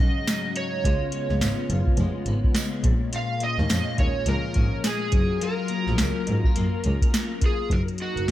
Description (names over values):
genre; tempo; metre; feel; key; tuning
indie pop, bedroom pop; 105 BPM; 4/4; swing 60% on 16ths; F# major; A4 = 440 Hz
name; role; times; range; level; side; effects
overdriven slide guitar; melody; 0.0-8.3 s; F#4 to E#5; -30 LUFS; right 2 dB; analog chorus, dub echo
clean electric guitar; accompaniment; 0.0-8.3 s; G#2 to E#4; -30 LUFS; left 5 dB; ensemble chorus, warbly pitch drift, dub echo
warm analog pad; sustained chords; 0.0-8.3 s; C#3 to A#4; -36 LUFS; equal; chorus
clear double bass; bass; 0.0-8.3 s; E#1 to G#2; -25 LUFS; equal; none
soft vintage rhythm box; drums; 0.0-8.3 s; hi-hat, kick drum, snare drum; -24 LUFS; equal; overdrive
tambourine; percussion; 0.3-7.3 s; none; -37 LUFS; right 13 dB; dub echo
room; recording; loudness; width
little or no reverb; echo-heavy mix; -21 LUFS; side -14 dB against mid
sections
0.0-7.7 A section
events
none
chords
0.0 G#7sus4; 0.8 C#7; 2.9 A#m7; 5.1 F#maj7; 7.7 F#6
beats
0.28 | 0.85 1.42 1.99 2.56 | 3.14 3.71 4.28 4.85 | 5.42 5.99 6.56 7.13 | 7.71 8.28